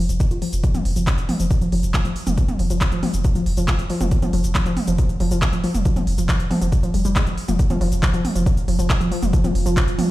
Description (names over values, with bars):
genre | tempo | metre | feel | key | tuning
driving peak-time techno | 138 BPM | 4/4 | straight | unclear | A4 = 440 Hz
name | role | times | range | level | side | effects
warbly dusty pluck | riff | 0.0-10.0 s | F3 to F4 | -24 LUFS | equal | chorus, tube saturation, sidechain pumping, digital delay
saturated sub bass | bass | 0.0-10.0 s | F1 | -24 LUFS | equal | tube saturation, sidechain pumping, low-pass filter
techno drum kit | drums | 0.1-10.1 s | handclaps, hi-hat, shaker, toms | -26 LUFS | equal | sidechain pumping on hats, sidechain pumping on perc, sidechain pumping on toms
electronic kick drum | drums | 0.2-9.9 s | none | -20 LUFS | equal | none
deep dark ambient pad | drone | 8.3-10.1 s | F3 | -28 LUFS | right 1 dB | chorus, built-in reverb, sidechain pumping
room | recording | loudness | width
little or no reverb | played on a big sound system in a bare room, stone room reverb | -17 LUFS | side -16 dB against mid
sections
0.0-7.6 A section; 7.6-10.1 B section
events
filter sweep on synth arpeggio sound 0.0-7.6; drop 7.6-10.1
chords
none